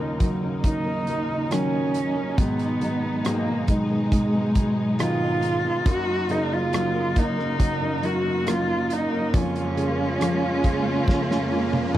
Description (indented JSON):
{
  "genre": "pop ballad",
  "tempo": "69 BPM",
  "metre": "4/4",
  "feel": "straight",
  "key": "Eb minor",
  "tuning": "A4 = 440 Hz",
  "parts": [
    { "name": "dark cello", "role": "melody", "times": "0.0-12.0 s", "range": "Ab3 to Gb4", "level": "-25 LUFS", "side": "right 1 dB", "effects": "slapback echo" },
    { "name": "warm upright piano", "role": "accompaniment", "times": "0.0-12.0 s", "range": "Eb2 to Bb3", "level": "-29 LUFS", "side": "right 2 dB", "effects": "none" },
    { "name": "warm studio string section", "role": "sustained chords", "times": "0.0-12.0 s", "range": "F2 to F4", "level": "-29 LUFS", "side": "right 1 dB", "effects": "none" },
    { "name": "fingerpicked steel-string acoustic guitar", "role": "arpeggios", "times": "0.0-12.0 s", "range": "Ab2 to Bb4", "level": "-31 LUFS", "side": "left 5 dB", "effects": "none" },
    { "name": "loose indie drum kit", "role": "drums", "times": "0.2-12.0 s", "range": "hi-hat, kick drum, rim click, snare drum, toms", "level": "-22 LUFS", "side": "equal", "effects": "none" },
    { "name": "riser", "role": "sound effects", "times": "8.8-12.0 s", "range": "none", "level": "-33 LUFS", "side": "right 3 dB", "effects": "none" }
  ],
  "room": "small room ambience",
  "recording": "dry, close 1970s-style studio recording, vinyl crackle",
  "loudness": "-21 LUFS",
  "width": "side -13 dB against mid",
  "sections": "0.0-12.0 A section",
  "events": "drum fill 11.1-12.0",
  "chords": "0.0 Ebm7; 2.4 Abm7; 5.9 Ebm7/Gb; 9.3 Bbm7/F"
}